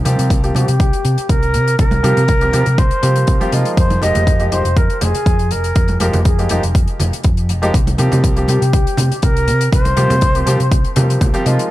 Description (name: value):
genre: nu-disco, nu disco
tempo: 121 BPM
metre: 4/4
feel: straight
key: unclear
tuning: A4 = 438 Hz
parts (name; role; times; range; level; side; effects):
- warm grand piano; accompaniment; 0.0-11.7 s; F3 to G4; -20 LUFS; equal; dub echo
- hollow-body short-scale fingered electric bass; bass; 0.1-11.6 s; F1 to C3; -16 LUFS; equal; sidechain pumping
- hi-hat; drums; 0.1-11.7 s; none; -27 LUFS; left 6 dB; none
- congas; percussion; 0.1-11.3 s; none; -24 LUFS; right 2 dB; none
- electronic kick drum; drums; 0.3-11.3 s; none; -15 LUFS; equal; overdrive
- mellow jazz flute; melody; 0.5-11.2 s; G4 to Eb5; -20 LUFS; equal; dub echo
room: small room reverb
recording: echo-heavy mix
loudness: -12 LUFS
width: side -16 dB against mid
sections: 0.0-11.7 A section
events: none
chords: 0.0 C7sus4; 3.8 Fm11; 7.7 C7sus4